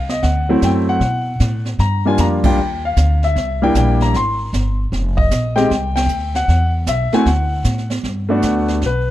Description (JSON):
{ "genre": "jazz piano trio", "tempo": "154 BPM", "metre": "4/4", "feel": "swing 66% on 8ths", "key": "unclear", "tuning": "A4 = 441 Hz", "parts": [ { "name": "clear concert grand piano", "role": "melody", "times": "0.0-9.1 s", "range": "F#3 to C6", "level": "-17 LUFS", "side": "left 1 dB", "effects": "none" }, { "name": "upright bass", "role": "bass", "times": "0.0-9.1 s", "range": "F1 to Cb3", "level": "-18 LUFS", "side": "equal", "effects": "none" }, { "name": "jazz brush drum kit", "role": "drums", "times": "0.1-9.1 s", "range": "brushed snare drum, crash cymbal, hi-hat, kick drum, ride cymbal, snare drum", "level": "-23 LUFS", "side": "right 2 dB", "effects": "none" } ], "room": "light reverb", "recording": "dark, warm production", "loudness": "-14 LUFS", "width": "side -14 dB against mid", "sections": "0.0-8.0 A section; 8.0-9.1 B section", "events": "band accent 2.4, 5.9; grand piano solo 8.0-9.1", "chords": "0.2 D7; 1.8 Gm7; 3.4 C7; 4.9 F7(no3); 6.5 Esus2; 7.3 D; 8.0 Gmaj7", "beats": "| 0.24 0.63 1.02 1.41 | 1.80 2.19 2.58 2.97 | 3.36 3.75 4.14 4.53 | 4.92 5.31 5.70 6.09 | 6.48 6.87 7.26 7.65 | 8.04 8.43 8.82" }